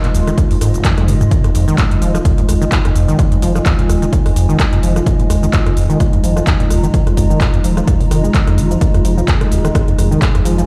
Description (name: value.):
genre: acid house.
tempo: 128 BPM.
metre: 4/4.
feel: swing 55% on 16ths.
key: F minor pentatonic.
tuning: A4 = 439 Hz.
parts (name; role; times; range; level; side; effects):
dark analog pad; sustained chords; 0.0-10.7 s; Ab3 to Bb4; -25 LUFS; equal; chorus, sidechain pumping.
deep acid bass; riff; 0.0-10.6 s; F1 to Ab3; -19 LUFS; equal; overdrive, analog delay.
booming analog drum machine; drums; 0.0-10.7 s; cabasa, handclaps, hi-hat, rim click, toms; -25 LUFS; equal; none.
warbly tape-like pad; texture; 0.0-10.7 s; F4 to C6; -26 LUFS; equal; chorus, built-in reverb, sidechain pumping.
saturated sub bass; bass; 0.1-10.6 s; Eb1 to F1; -20 LUFS; equal; sidechain pumping.
electronic kick drum; drums; 0.4-10.3 s; none; -17 LUFS; equal; overdrive.
room: digital ambience.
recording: played on a big sound system in a bare room, large studio reverb.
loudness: -14 LUFS.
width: mono.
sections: 0.0-10.7 A section.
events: drum fill 1.0-1.3.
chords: 0.0 Fm7.